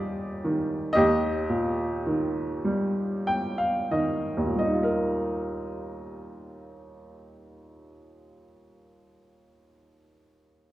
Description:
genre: classical, lyrical solo piano.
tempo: 28-41 BPM (dotted quarters).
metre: 6/8.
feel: rubato.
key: Eb major.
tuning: A4 = 441 Hz.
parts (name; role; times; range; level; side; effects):
warm upright piano; solo; 0.0-10.7 s; Eb2 to G5; -25 LUFS; equal; none.
room: wet recital hall reverb, RT60 1.6 s.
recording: dark, warm production.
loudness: -24 LUFS.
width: side -15 dB against mid.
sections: 0.0-4.6 A section; 4.6-8.7 B section.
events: slowing down 0.0-4.6; upright piano fill 2.6-4.6.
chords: 0.0 Eb; 4.6 Ebadd9.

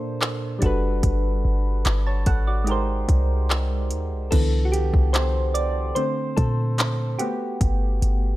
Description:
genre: contemporary R&B.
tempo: 73 BPM.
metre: 4/4.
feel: straight.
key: unclear.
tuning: A4 = 441 Hz.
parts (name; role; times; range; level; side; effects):
soft electric-piano-like synth keys; accompaniment; 0.0-8.4 s; Bb2 to A5; -26 LUFS; right 1 dB; chorus, phaser.
smooth R&B drum kit; drums; 0.2-8.2 s; crash cymbal, handclaps, hi-hat, kick drum; -23 LUFS; equal; overdrive.
clean 808-style bass; bass; 0.6-8.4 s; F#1 to Bb2; -22 LUFS; equal; none.
room: little or no reverb.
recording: none.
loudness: -20 LUFS.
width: side -16 dB against mid.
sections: 0.0-4.3 A section; 4.3-8.4 B section.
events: synth keys solo 4.3-8.4.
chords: 0.0 Bbmaj9; 0.6 Gmaj9; 2.7 Abmaj9; 4.3 Cmaj9; 6.0 Bbmaj9; 7.2 Gmaj9.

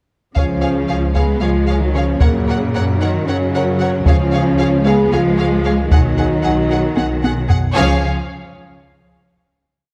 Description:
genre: cinematic, epic orchestral film score.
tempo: 227 BPM (eighths).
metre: 7/8.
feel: straight.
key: Db mixolydian.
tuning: A4 = 441 Hz.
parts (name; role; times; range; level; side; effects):
warm symphonic violin section; melody; 0.4-8.1 s; F5 to Gb5; -28 LUFS; equal; none.
warm symphonic violin section; second line; 0.4-8.0 s; Ab4 to Gb5; -28 LUFS; equal; none.
warm symphonic viola section; accompaniment; 0.4-8.1 s; Db3 to Cb4; -24 LUFS; equal; none.
mellow French horn section; sustained chords; 0.4-8.0 s; Bb3 to Ab4; -23 LUFS; equal; none.
warm studio double bass section; bass; 0.4-8.1 s; Cb2 to Gb2; -22 LUFS; equal; none.
warm symphonic cello section; bass; 0.4-8.1 s; Bb2 to Ab3; -24 LUFS; equal; none.
solo taiko drums; drums; 0.4-7.7 s; none; -19 LUFS; equal; none.
room: moderate scoring stage reverb, RT60 1.6 s.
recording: dark, warm production.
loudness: -16 LUFS.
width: mono.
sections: 0.4-7.8 theme; 7.8-9.6 final chord.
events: drum fill 7.0-7.8.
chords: 0.4 Db; 2.2 Gb; 4.1 Db; 5.9 Cb6; 7.8 Db.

